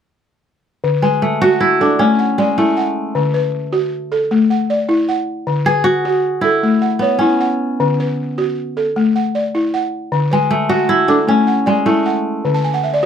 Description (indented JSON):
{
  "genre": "west african traditional, West African string and xylophone music",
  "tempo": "103 BPM (dotted quarters)",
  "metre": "12/8",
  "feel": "straight",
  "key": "D lydian",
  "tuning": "A4 = 440 Hz",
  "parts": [
    { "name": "balafon", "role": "arpeggios", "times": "0.8-13.1 s", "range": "D3 to A5", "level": "-16 LUFS", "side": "left 1 dB", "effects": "none" },
    { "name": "kora", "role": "melody", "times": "1.0-13.1 s", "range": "G#3 to G#4", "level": "-16 LUFS", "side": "equal", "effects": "none" }
  ],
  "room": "light reverb",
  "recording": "close, detailed microphones",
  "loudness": "-14 LUFS",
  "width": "side -8 dB against mid",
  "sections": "0.8-13.1 A section",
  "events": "balafon fill 12.5-13.1",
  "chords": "0.8 D; 2.0 A; 3.1 D; 4.3 A5; 5.5 D; 6.6 A; 7.8 D; 9.0 A5; 10.1 D; 11.3 A; 12.4 D"
}